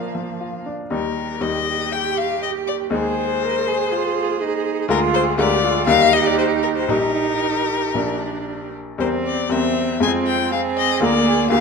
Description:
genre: quick classical-period movement for piano quartet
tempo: 112-123 BPM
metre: 4/4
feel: rubato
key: Eb major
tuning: A4 = 439 Hz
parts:
  - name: warm violin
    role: melody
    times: 0.0-11.6 s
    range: Bb4 to Ab5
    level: -22 LUFS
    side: left 9 dB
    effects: none
  - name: rich cello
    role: second line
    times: 0.0-11.6 s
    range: Bb3 to Bb4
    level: -24 LUFS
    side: right 9 dB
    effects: none
  - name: bright grand piano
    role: accompaniment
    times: 0.0-11.6 s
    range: Bb1 to Bb4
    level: -23 LUFS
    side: left 3 dB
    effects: none
  - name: warm viola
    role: accompaniment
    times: 0.0-11.6 s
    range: F3 to Ab4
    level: -25 LUFS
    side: right 4 dB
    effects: none
room: light reverb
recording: close, detailed microphones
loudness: -17 LUFS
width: side -5 dB against mid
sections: 0.9-11.6 A section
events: none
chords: 0.0 Bb; 0.9 Eb; 2.9 Ab/Eb; 4.9 Bb7/D; 5.9 Eb; 6.9 Eb/Bb; 8.0 Bb; 9.0 C7/E; 10.0 Fm; 11.0 Bb7/D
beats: 0.40 | 0.92 1.43 1.93 2.43 | 2.92 3.42 3.92 4.42 | 4.90 5.39 5.88 6.39 | 6.90 7.43 7.96 8.49 | 9.01 9.52 10.03 10.53 | 11.03 11.52

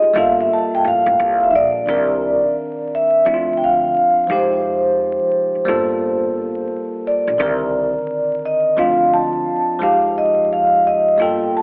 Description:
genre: hip hop, jazz-hop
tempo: 87 BPM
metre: 4/4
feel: swing 63% on 16ths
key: C minor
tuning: A4 = 440 Hz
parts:
  - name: vibraphone with soft mallets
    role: melody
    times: 0.0-11.6 s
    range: C5 to A5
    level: -15 LUFS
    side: equal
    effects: analog delay
  - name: bell-like tine electric piano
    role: accompaniment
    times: 0.0-11.6 s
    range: D3 to Bb4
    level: -22 LUFS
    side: equal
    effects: fast stereo tremolo
  - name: upright bass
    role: bass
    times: 0.0-11.6 s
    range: G1 to F2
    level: -28 LUFS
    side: equal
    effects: none
room: wet lush hall reverb, RT60 1.7 s, small room ambience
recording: dreamy mix soaked in reverb, vinyl crackle, telephone sound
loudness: -14 LUFS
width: side -31 dB against mid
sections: 0.0-1.9 A section; 1.9-11.6 B section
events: vibraphone solo 0.0-1.9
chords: 0.2 Gm9; 1.9 Cm9; 3.3 Dm7; 4.3 Fm9; 5.7 Gm9; 7.4 Cm9; 8.8 Dm7; 9.8 Fm9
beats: 0.51 1.19 | 1.88 2.57 3.26 3.95 | 4.64 5.33 6.02 6.71 | 7.40 8.09 8.78 9.47 | 10.16 10.85 11.54

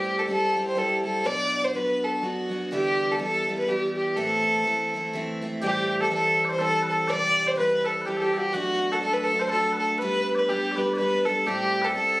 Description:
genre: celtic folk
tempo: 124 BPM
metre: 3/4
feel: swing 58% on 8ths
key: A dorian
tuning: A4 = 438 Hz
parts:
  - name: dark fiddle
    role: melody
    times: 0.0-12.2 s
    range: F#4 to D5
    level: -23 LUFS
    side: equal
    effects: none
  - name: picked steel-string acoustic guitar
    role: accompaniment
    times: 0.0-12.2 s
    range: G2 to A4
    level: -30 LUFS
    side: equal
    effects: none
  - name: mellow small bagpipes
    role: second line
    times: 5.6-12.2 s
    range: F#4 to D5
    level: -32 LUFS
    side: left 1 dB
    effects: none
room: moderate studio reverb, RT60 0.6 s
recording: recorded on a phone in the room, studio ambience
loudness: -22 LUFS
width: side -19 dB against mid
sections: 0.0-5.6 A section; 5.6-12.2 A section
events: none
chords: 0.0 Am7; 1.3 Bm; 2.7 G6; 4.2 Am; 5.6 Am7; 7.1 C; 8.5 Bm7; 10.0 Gadd9; 11.5 Am7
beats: 0.29 0.78 | 1.26 1.75 2.23 | 2.72 3.20 3.69 | 4.17 4.66 5.14 | 5.63 6.12 6.60 | 7.09 7.57 8.06 | 8.54 9.03 9.52 | 10.00 10.49 10.97 | 11.46 11.95

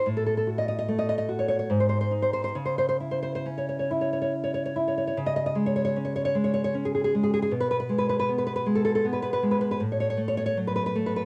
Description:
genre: romantic piece for solo classical guitar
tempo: 67-80 BPM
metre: 3/4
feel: rubato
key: C# minor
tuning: A4 = 440 Hz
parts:
  - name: nylon-string guitar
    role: solo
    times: 0.0-11.3 s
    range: G#2 to D#5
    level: -26 LUFS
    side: equal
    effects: none
room: moderate small room reverb, RT60 0.5 s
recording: home recording on cassette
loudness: -26 LUFS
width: mono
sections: 0.0-5.2 A section; 5.2-11.3 B section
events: none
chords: 0.1 F#m/A; 1.7 G#5; 2.6 C#m; 5.2 C#5; 7.5 G#m/B; 9.8 F#m/A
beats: | 0.07 0.90 1.71 | 2.56 3.45 4.32 | 5.17 5.96 6.73 | 7.51 8.28 9.05 | 9.81 10.57

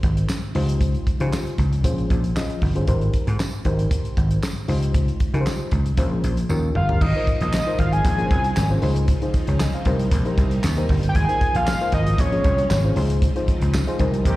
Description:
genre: early-eighties boogie funk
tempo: 116 BPM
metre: 4/4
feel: straight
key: Ab major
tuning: A4 = 441 Hz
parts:
  - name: mellow FM electric piano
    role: accompaniment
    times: 0.0-14.3 s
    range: Db4 to Ab5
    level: -28 LUFS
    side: left 2 dB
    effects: chorus, plate reverb, slapback echo
  - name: vintage slap bass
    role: bass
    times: 0.0-14.4 s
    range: G1 to Db3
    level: -21 LUFS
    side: equal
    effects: none
  - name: damped 70s drum kit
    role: drums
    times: 0.0-14.4 s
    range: crash cymbal, handclaps, hi-hat, kick drum, snare drum, toms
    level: -23 LUFS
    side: equal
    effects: none
  - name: tambourine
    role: percussion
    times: 0.3-13.9 s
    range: none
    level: -38 LUFS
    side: right 2 dB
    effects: none
  - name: fat analog lead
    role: melody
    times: 6.8-13.0 s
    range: Db5 to Ab5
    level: -23 LUFS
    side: equal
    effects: chorus, slapback echo, plate reverb
  - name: string machine, full ensemble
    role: sustained chords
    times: 7.0-14.4 s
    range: Bb2 to Eb4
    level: -32 LUFS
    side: right 1 dB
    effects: ensemble chorus
  - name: analog synth brass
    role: second line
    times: 14.3-14.4 s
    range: Eb3 to G4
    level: -25 LUFS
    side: right 3 dB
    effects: chorus
room: little or no reverb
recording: live gig heard through the venue's PA, recital hall reverb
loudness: -18 LUFS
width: side -17 dB against mid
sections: 0.0-7.0 A section; 7.0-14.4 B section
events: drum fill 6.5-7.0; band accent 13.2-14.4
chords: 0.0 Abmaj7; 0.5 Dbmaj9#11; 1.8 Bbm9; 2.9 Abmaj7; 4.7 Dbmaj9#11; 6.0 Bbm9; 6.5 Eb7; 7.0 Ab6; 8.0 Bbm9; 8.8 Dbmaj9; 9.9 Cm7; 11.2 Ab6; 12.2 Bbm9; 13.0 Dbmaj9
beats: 0.29 | 0.81 1.32 1.84 2.36 | 2.88 3.39 3.91 4.43 | 4.94 5.46 5.98 6.50 | 7.01 7.53 8.05 8.56 | 9.08 9.60 10.12 10.63 | 11.15 11.67 12.19 12.70 | 13.22 13.74 14.25

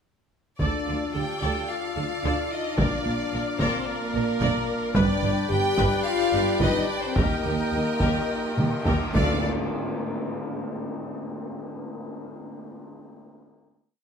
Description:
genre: cinematic, epic orchestral film score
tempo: 109 BPM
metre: 4/4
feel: straight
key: D phrygian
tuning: A4 = 440 Hz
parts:
  - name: clear chamber violin section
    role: melody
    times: 0.6-9.5 s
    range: Bb4 to G5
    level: -31 LUFS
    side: left 1 dB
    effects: none
  - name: clear symphonic violin section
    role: second line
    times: 0.6-9.5 s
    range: D5 to G5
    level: -34 LUFS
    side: left 1 dB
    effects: none
  - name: clear chamber viola section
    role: accompaniment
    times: 0.6-9.5 s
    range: D4 to D5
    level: -33 LUFS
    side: left 1 dB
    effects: none
  - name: mellow French horn section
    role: sustained chords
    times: 0.6-9.4 s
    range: Bb3 to G4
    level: -29 LUFS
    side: left 3 dB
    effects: none
  - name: warm woodwind section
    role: sustained chords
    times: 0.6-9.4 s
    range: D4 to G5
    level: -33 LUFS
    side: left 1 dB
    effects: none
  - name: clear symphonic double bass section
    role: bass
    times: 0.6-9.5 s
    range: G1 to Eb2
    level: -30 LUFS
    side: right 3 dB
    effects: none
  - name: rich symphonic cello section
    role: bass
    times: 0.6-9.5 s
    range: D2 to D3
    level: -30 LUFS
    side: right 2 dB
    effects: none
  - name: taiko ensemble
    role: drums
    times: 0.6-10.2 s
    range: none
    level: -28 LUFS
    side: equal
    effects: none
  - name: cymbal swell and tam-tam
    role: percussion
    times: 5.0-11.4 s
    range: none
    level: -32 LUFS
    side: left 1 dB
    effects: none
room: wet recital hall reverb, RT60 1.5 s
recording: none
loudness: -23 LUFS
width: side -7 dB against mid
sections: 0.6-9.4 theme; 9.4-11.7 final hit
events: band accent 9.4-10.0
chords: 0.6 Dm; 2.8 Bb; 5.0 G; 7.2 Eb; 9.1 Dm; 9.4 N.C.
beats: | 0.61 1.15 1.70 2.24 | 2.79 3.33 3.88 4.42 | 4.97 5.52 6.07 6.62 | 7.17 7.73 8.29 8.86 | 9.43 10.00 10.57 11.14

